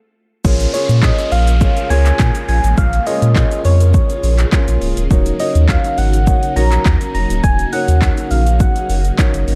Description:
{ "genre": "dance-pop", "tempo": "103 BPM", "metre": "4/4", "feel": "straight", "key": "Bb minor", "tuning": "A4 = 440 Hz", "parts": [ { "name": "warm concert grand piano", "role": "accompaniment", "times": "0.4-9.6 s", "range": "Bb3 to Db5", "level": "-25 LUFS", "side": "equal", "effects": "sidechain pumping" }, { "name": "phased string machine", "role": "sustained chords", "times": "0.4-9.6 s", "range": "Db3 to F4", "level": "-29 LUFS", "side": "equal", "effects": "ensemble chorus, phaser, sidechain pumping" }, { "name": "warm sub bass", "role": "bass", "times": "0.4-9.6 s", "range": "Db1 to Bb2", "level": "-16 LUFS", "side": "equal", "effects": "sidechain pumping" }, { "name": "deep house drum kit", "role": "drums", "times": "0.4-9.6 s", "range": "crash cymbal, handclaps, hi-hat, kick drum, shaker", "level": "-19 LUFS", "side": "equal", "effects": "overdrive" }, { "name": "downlifter", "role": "sound effects", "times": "0.4-5.1 s", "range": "none", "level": "-33 LUFS", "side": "equal", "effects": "none" }, { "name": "soft struck synth lead", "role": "melody", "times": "0.7-9.2 s", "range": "Db5 to Bb5", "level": "-23 LUFS", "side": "equal", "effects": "chorus, phaser, delay" } ], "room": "little or no reverb", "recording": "dark, warm production", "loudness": "-14 LUFS", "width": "mono", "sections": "0.4-9.6 A section", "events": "stop 0.0-0.4", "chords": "0.4 Bbm7; 5.1 Ebm7" }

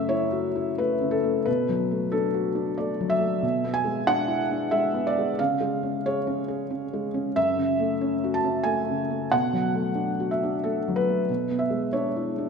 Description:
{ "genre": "neoclassical minimalist piano", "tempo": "91 BPM", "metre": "3/4", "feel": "rubato", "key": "F# minor", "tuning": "A4 = 441 Hz", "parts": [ { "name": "felt-muted upright piano", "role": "solo", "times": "0.0-12.5 s", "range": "F#2 to A5", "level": "-23 LUFS", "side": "equal", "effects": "none" } ], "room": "wet concert hall reverb, RT60 2.5 s", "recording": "minimal, uncompressed stereo recording", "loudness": "-23 LUFS", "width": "side -5 dB against mid", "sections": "0.0-12.5 A section", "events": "none", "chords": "0.0 F#m7; 1.5 Bm7; 3.4 E7/B; 5.4 C#; 7.4 F#m7; 9.3 Bm7; 11.3 E7/B" }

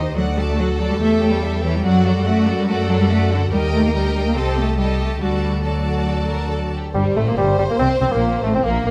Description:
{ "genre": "quick classical-period movement for symphony orchestra", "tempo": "142 BPM", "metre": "4/4", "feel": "straight", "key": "unclear", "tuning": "A4 = 440 Hz", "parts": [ { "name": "rich studio violin section", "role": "melody", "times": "0.0-8.9 s", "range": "F#4 to D5", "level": "-31 LUFS", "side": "equal", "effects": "none" }, { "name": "rich studio violin section", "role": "second line", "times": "0.0-8.9 s", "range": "G3 to A5", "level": "-31 LUFS", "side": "equal", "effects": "none" }, { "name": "rich studio viola section", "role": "accompaniment", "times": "0.0-8.9 s", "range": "G3 to Eb5", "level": "-28 LUFS", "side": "equal", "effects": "none" }, { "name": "rich studio double bass section", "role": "bass", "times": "0.0-8.9 s", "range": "G1 to F#2", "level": "-24 LUFS", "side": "equal", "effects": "none" }, { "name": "warm studio cello section", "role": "bass", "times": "0.0-8.9 s", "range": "G2 to C4", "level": "-23 LUFS", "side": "equal", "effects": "none" }, { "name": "warm bassoon", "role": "accompaniment", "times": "6.9-8.9 s", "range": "G3 to C4", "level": "-23 LUFS", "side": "equal", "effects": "none" }, { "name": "mellow French horn section", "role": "sustained chords", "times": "6.9-8.9 s", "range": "G3 to C4", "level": "-28 LUFS", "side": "equal", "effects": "none" } ], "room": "light reverb", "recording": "none", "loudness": "-19 LUFS", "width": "mono", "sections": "0.0-7.0 A section; 7.0-8.9 A section", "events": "none", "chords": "0.2 D; 1.0 A7/E; 1.8 D/F#; 3.5 Eb; 4.4 Am7b5/C; 5.2 D; 7.0 Gm; 7.8 Bbsus2" }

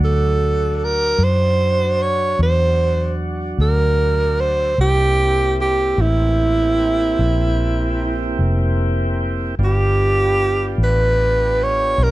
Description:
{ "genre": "slow blues", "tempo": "50 BPM (dotted quarters)", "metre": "12/8", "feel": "straight", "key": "unclear", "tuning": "A4 = 440 Hz", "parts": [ { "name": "breathy tenor saxophone", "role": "melody", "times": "0.0-12.1 s", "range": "E4 to C#5", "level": "-18 LUFS", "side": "right 2 dB", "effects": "slapback echo" }, { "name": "tonewheel organ", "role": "sustained chords", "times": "0.0-12.1 s", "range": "F#3 to G4", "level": "-26 LUFS", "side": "equal", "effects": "slow rotary speaker" }, { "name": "vintage muted fingered electric bass", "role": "bass", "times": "0.0-12.1 s", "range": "F1 to F#2", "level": "-18 LUFS", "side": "equal", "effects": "none" } ], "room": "little or no reverb", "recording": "dry, close 1970s-style studio recording", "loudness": "-15 LUFS", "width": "side -17 dB against mid", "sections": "0.0-12.1 A section", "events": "none", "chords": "0.0 D7; 4.8 C7; 9.6 G7" }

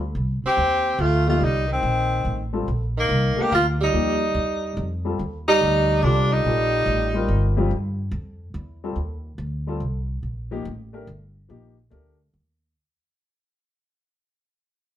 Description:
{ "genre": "modal jazz", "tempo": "143 BPM", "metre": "3/4", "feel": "swing 67% on 8ths", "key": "unclear", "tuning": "A4 = 440 Hz", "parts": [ { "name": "upright bass", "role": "bass", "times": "0.0-12.7 s", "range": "G1 to G2", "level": "-24 LUFS", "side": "equal", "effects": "none" }, { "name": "clear tenor saxophone", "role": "melody", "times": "0.5-7.6 s", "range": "Bb3 to G4", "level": "-22 LUFS", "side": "left 1 dB", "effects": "none" }, { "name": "breathy tenor saxophone", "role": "second line", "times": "0.5-7.6 s", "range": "Eb3 to C4", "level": "-26 LUFS", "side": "right 4 dB", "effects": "none" }, { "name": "warm baby grand piano", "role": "accompaniment", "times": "1.3-12.2 s", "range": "F2 to Bb4", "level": "-28 LUFS", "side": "left 4 dB", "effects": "none" } ], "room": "moderate studio reverb, RT60 0.7 s", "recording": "band playing live in one room", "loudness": "-20 LUFS", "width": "side -11 dB against mid", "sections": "0.0-7.7 A section; 7.7-12.7 B section", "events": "fade-out 7.7-12.7", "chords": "0.0 F13; 2.7 Eb" }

